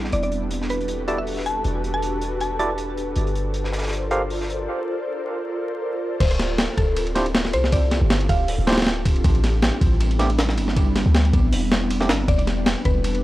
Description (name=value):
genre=drum and bass, jungle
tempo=158 BPM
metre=4/4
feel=swing 54% on 16ths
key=D minor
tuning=A4 = 440 Hz
part: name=ethereal airy pad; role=sustained chords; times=0.0-13.2 s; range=G3 to D5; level=-27 LUFS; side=equal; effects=ensemble chorus, built-in reverb
part: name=warm 808-style bass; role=bass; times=0.0-13.2 s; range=D1 to D2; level=-23 LUFS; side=equal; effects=none
part: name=crunchy breakbeat drum kit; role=drums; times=0.0-4.6 s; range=hi-hat, snare drum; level=-34 LUFS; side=equal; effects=high-pass filter on hats, studio reverb, high-pass filter on snare, high-pass filter on room
part: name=mallet-like synth pluck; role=melody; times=0.1-2.9, 6.2-8.7, 12.3-13.1 s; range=A4 to A5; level=-28 LUFS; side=equal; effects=chorus, dub echo
part: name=overdriven tine electric piano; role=stabs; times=1.1-4.2, 7.2-12.1 s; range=A3 to F5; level=-28 LUFS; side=right 1 dB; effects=low-pass filter, dub echo
part: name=breakbeat sampler-style drum kit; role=drums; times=6.2-13.2 s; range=crash cymbal, hi-hat, kick drum, ride cymbal, snare drum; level=-21 LUFS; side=equal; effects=studio reverb
room=little or no reverb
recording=dry, gritty hardware recording, transformer saturation, vinyl crackle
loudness=-19 LUFS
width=side -16 dB against mid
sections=0.0-6.2 A section; 6.2-13.2 B section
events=filter sweep on tine electric piano 0.0-6.2; break 4.7-6.2; drop 6.2-13.2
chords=0.1 Em11; 3.2 Gm11; 6.2 Dm11; 9.2 Am11; 12.3 Em11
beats=| 0.13 0.51 0.89 1.27 | 1.65 2.03 2.41 2.79 | 3.17 3.55 3.93 4.31 | 4.68 5.07 5.45 5.83 | 6.20 6.58 6.96 7.34 | 7.72 8.10 8.48 8.86 | 9.24 9.62 10.00 10.38 | 10.76 11.14 11.52 11.90 | 12.28 12.66 13.04